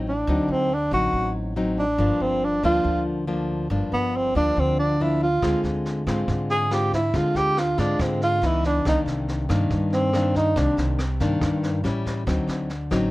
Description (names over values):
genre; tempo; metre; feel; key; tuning
bossa nova; 140 BPM; 4/4; straight; unclear; A4 = 440 Hz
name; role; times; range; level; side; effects
nylon-string guitar; accompaniment; 0.0-13.1 s; G2 to F4; -25 LUFS; left 2 dB; none
upright bass; bass; 0.0-13.1 s; G1 to Ab2; -27 LUFS; equal; none
breathy tenor saxophone; melody; 0.1-10.8 s; B3 to Ab4; -22 LUFS; right 1 dB; none
jazz brush drum kit; drums; 5.4-13.0 s; kick drum, rim click, snare drum; -32 LUFS; equal; none
room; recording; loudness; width
light reverb; none; -20 LUFS; side -18 dB against mid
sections
0.0-13.1 A section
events
tenor saxophone solo 0.0-13.1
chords
0.0 D7b9; 2.0 Gm7; 5.4 Dm7b5; 8.4 Dbm9; 8.8 Cm9; 11.8 A7; 12.3 D7b9